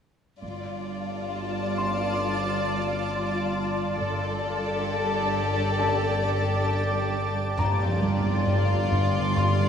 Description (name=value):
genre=cinematic, suspense film score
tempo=67 BPM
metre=4/4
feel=straight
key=unclear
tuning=A4 = 439 Hz
part: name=warm studio violin section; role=second line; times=0.4-9.7 s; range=F4 to D5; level=-30 LUFS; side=left 5 dB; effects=none
part: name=shimmering ambient pad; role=sustained chords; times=1.2-9.7 s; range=F4 to C6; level=-30 LUFS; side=right 2 dB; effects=chorus, built-in reverb
part: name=warm studio cello section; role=bass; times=0.4-9.7 s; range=G2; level=-32 LUFS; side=right 3 dB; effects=none
part: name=warm studio double bass section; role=bass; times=0.4-9.7 s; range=G1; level=-31 LUFS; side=right 1 dB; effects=none
part: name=analog drone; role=drone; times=1.0-9.7 s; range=G1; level=-30 LUFS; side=left 1 dB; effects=chorus
part: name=clear baby grand piano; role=texture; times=1.8-9.7 s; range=A5 to C6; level=-34 LUFS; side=left 4 dB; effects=none
part: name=round analog bass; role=riff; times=7.6-9.6 s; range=G2 to G3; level=-27 LUFS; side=right 1 dB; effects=none
part: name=impact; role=sound effects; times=7.6-9.7 s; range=none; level=-34 LUFS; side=left 1 dB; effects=none
room=wet scoring stage reverb, RT60 1.8 s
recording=small room ambience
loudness=-23 LUFS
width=side -8 dB against mid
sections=0.4-7.6 A section; 7.6-9.7 B section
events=impact 7.6-9.7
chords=0.4 Dm7/G; 4.0 Gsus2; 7.6 Dm7/G